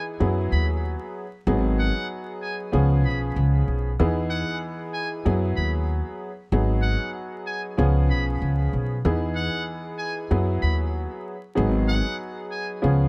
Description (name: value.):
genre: hip hop, boom-bap hip-hop.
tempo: 95 BPM.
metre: 4/4.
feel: swing 55% on 16ths.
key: G# minor.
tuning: A4 = 440 Hz.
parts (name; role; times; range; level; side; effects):
trumpet with metal mute; melody; 0.0-12.7 s; F#5 to B5; -35 LUFS; equal; high-pass filter, low-pass filter, tape echo.
warm upright piano; accompaniment; 0.0-13.1 s; E3 to G#4; -30 LUFS; equal; high-pass filter, low-pass filter.
upright bass; bass; 0.2-13.1 s; G#1 to F#2; -24 LUFS; equal; none.
room: light reverb.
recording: vinyl crackle.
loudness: -25 LUFS.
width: mono.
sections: 0.0-13.1 A section.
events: none.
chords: 0.2 F#9sus4; 1.5 G#m7; 2.7 C#7; 4.0 Emaj7; 5.3 F#9sus4; 6.5 G#m7; 7.8 C#7; 9.0 Emaj7; 10.3 F#9sus4; 11.6 G#m7.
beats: 0.20 0.83 | 1.46 2.10 2.73 3.36 | 3.99 4.62 5.25 5.88 | 6.52 7.15 7.78 8.41 | 9.04 9.67 10.31 10.94 | 11.57 12.20 12.83.